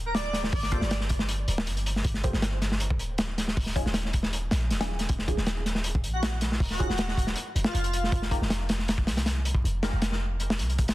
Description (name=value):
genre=drum and bass, jungle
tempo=158 BPM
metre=4/4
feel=straight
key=G phrygian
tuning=A4 = 440 Hz
part: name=warm 808-style bass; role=bass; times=0.0-10.9 s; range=D1 to C2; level=-29 LUFS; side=equal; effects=none
part: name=airy dreamy lead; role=melody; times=0.1-0.9, 6.1-8.2 s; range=F4 to D5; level=-34 LUFS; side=equal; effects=chorus, dub echo
part: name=crunchy breakbeat drum kit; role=drums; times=0.1-10.9 s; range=hi-hat, kick drum, snare drum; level=-28 LUFS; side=equal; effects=none
part: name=filtered dub chord stab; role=stabs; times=0.7-9.9 s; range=Gb3 to C5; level=-38 LUFS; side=equal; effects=phaser, analog chorus, dub echo
room=small room ambience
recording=dense, heavily limited modern master, vinyl crackle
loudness=-25 LUFS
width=side -17 dB against mid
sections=0.0-10.9 A section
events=none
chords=0.0 G5; 3.6 Ebm11; 7.4 F5